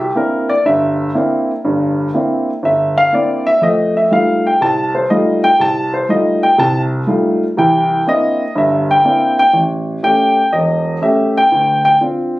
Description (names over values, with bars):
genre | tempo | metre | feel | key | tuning
solo jazz | 122 BPM | 4/4 | swing 69% on 8ths | C mixolydian | A4 = 440 Hz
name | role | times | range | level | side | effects
warm upright piano | solo | 0.0-12.4 s | E1 to A5 | -12 LUFS | equal | none
room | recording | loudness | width
moderate club reverb, RT60 0.5 s | recorded on a phone in the room, studio ambience | -12 LUFS | side -18 dB against mid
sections
0.0-12.4 A section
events
upright piano solo 0.0-12.4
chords
0.0 C9; 3.6 F9; 7.6 C9; 9.5 A7; 11.5 Dm7